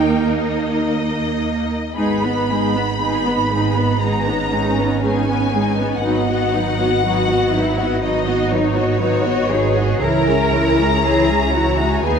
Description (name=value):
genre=classical, slow romantic movement for string orchestra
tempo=52-62 BPM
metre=4/4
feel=rubato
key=G# minor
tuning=A4 = 439 Hz
part: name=rich studio violin section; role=melody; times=0.0-12.2 s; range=C#5 to B5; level=-22 LUFS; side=left 3 dB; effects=none
part: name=warm studio violin section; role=second line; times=0.0-12.2 s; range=B3 to E5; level=-24 LUFS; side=left 3 dB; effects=none
part: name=bright studio viola section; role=accompaniment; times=0.0-12.2 s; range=E3 to F#4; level=-20 LUFS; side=equal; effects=none
part: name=clear studio cello section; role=bass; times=0.0-12.2 s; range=B3 to A#4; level=-24 LUFS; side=right 4 dB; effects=none
part: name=rich studio double bass section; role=bass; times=0.0-12.2 s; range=G#1 to D#2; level=-22 LUFS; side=right 4 dB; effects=none
room=moderate scoring stage reverb, RT60 1.9 s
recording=dark, warm production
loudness=-15 LUFS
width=side -6 dB against mid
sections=0.0-12.2 A section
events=none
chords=0.0 D#5; 2.0 G#m; 6.0 B/G#; 10.0 C#m